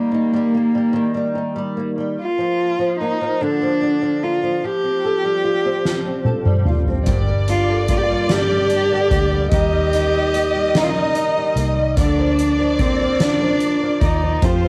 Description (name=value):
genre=six-eight pop ballad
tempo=49 BPM (dotted quarters)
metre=6/8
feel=straight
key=unclear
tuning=A4 = 440 Hz
part: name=dark cello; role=melody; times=0.0-14.7 s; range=Bb3 to G4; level=-22 LUFS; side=equal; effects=cassette tape
part: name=flamenco guitar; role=accompaniment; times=0.0-14.7 s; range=G2 to A4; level=-27 LUFS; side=equal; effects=double-tracked, cassette tape
part: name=soft-mallet drum kit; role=drums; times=5.9-14.6 s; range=hi-hat, kick drum, snare drum, toms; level=-23 LUFS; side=equal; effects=none
part: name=warm studio violin section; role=second line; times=7.0-14.7 s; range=C5 to Eb5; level=-25 LUFS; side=equal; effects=cassette tape
part: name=picked steel-string acoustic guitar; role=arpeggios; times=7.1-14.7 s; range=G2 to Bb4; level=-34 LUFS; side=equal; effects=none
part: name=vintage muted fingered electric bass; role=bass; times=7.1-14.7 s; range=G1 to F2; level=-25 LUFS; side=equal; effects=none
room=light reverb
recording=home recording on cassette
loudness=-18 LUFS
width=mono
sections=0.0-14.7 A section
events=drum fill 5.8-7.1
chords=0.0 Eb; 2.2 Bb; 4.6 Fadd9; 7.1 Gm; 9.5 Eb; 12.0 Bb/D